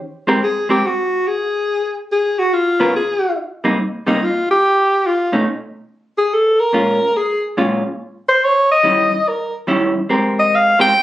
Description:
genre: jazz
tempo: 142 BPM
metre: 4/4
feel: swing 66% on 8ths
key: Ab major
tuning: A4 = 440 Hz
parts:
  - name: vintage hollow-body jazz guitar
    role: accompaniment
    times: 0.3-10.9 s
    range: Bb2 to Bb4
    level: -17 LUFS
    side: equal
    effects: none
  - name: warm alto saxophone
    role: melody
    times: 0.4-11.0 s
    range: Eb4 to G5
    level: -14 LUFS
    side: equal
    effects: none
room: moderate club reverb, RT60 0.8 s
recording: recorded on a phone in the room, studio reverb, nothing above 11.0 kHz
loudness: -14 LUFS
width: side -14 dB against mid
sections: 0.0-11.0 A section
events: none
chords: 0.0 Abmaj9; 1.7 N.C.; 2.5 Db6; 3.4 Cm7; 5.0 B9; 6.7 Bbm7; 8.4 Eb7b9; 10.1 Abmaj9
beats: 0.41 0.83 1.25 | 1.68 2.10 2.52 2.94 | 3.36 3.78 4.20 4.62 | 5.04 5.46 5.89 6.31 | 6.73 7.15 7.57 7.99 | 8.41 8.83 9.25 9.68 | 10.10 10.52 10.94

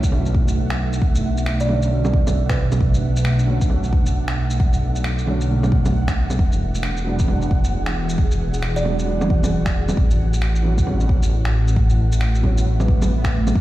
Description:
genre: future garage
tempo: 134 BPM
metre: 4/4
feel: swing 61% on 16ths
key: B dorian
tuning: A4 = 442 Hz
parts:
  - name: felt-muted upright piano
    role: accompaniment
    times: 0.0-12.6 s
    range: D3 to D4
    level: -28 LUFS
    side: right 1 dB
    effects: sidechain pumping, ping-pong delay
  - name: ethereal airy pad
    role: sustained chords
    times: 0.0-13.6 s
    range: A2 to E5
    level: -25 LUFS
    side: right 1 dB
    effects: ensemble chorus, built-in reverb, phaser, vintage 12-bit sampler grit, sidechain pumping
  - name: swelling detuned saw bass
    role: bass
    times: 0.0-13.6 s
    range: E1 to B1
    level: -20 LUFS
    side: equal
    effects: sidechain pumping
  - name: electronic kick drum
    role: drums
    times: 0.0-13.6 s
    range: none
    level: -19 LUFS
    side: equal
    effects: none
  - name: electronic shaker, bongos and finger snaps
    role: drums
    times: 0.0-13.5 s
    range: none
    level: -28 LUFS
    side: right 1 dB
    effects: none
  - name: flickering grainy texture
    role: texture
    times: 0.0-13.6 s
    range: F#5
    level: -35 LUFS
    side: right 1 dB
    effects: built-in reverb
  - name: kalimba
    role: melody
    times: 1.6-2.9, 8.8-9.1 s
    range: B4 to D5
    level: -30 LUFS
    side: right 3 dB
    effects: dub echo
  - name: swell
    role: sound effects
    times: 12.8-13.6 s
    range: none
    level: -32 LUFS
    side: equal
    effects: none
room: light reverb, digital ambience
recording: played on a big sound system in a bare room, large studio reverb, vinyl crackle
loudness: -17 LUFS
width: side -15 dB against mid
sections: 0.0-13.6 A section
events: swell 12.8-13.6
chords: 0.0 Bm9; 6.4 E9; 10.0 A6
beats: 0.12 0.57 | 1.02 1.47 1.91 2.36 | 2.81 3.26 3.70 4.15 | 4.60 5.05 5.50 5.94 | 6.39 6.84 7.29 7.73 | 8.18 8.63 9.08 9.53 | 9.97 10.42 10.87 11.32 | 11.76 12.21 12.66 13.11 | 13.55

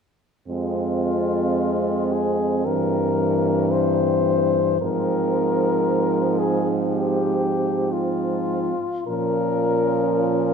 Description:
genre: classical, lyrical piece for horn quartet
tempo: 50-60 BPM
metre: 4/4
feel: rubato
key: F minor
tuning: A4 = 439 Hz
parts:
  - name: clear French horn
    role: melody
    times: 0.5-10.5 s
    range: F4 to C5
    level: -23 LUFS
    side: left 5 dB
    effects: none
  - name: mellow French horn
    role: second line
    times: 0.5-10.5 s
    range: C4 to Db4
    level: -26 LUFS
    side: right 10 dB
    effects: none
  - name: warm French horn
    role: accompaniment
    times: 0.5-10.5 s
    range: E3 to Ab3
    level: -26 LUFS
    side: left 1 dB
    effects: none
  - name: mellow French horn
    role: bass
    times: 0.5-10.5 s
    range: F2 to Bb2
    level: -26 LUFS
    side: right 2 dB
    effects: none
room: moderate concert hall reverb, RT60 1.8 s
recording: minimal, uncompressed stereo recording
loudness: -19 LUFS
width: side -6 dB against mid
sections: 0.5-10.5 A section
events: none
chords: 0.5 Fm; 2.7 C7/G; 4.8 Fm/Ab; 9.1 Bbm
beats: | 0.49 1.58 2.66 3.73 | 4.81 5.87 6.91 7.93 | 9.07 10.13

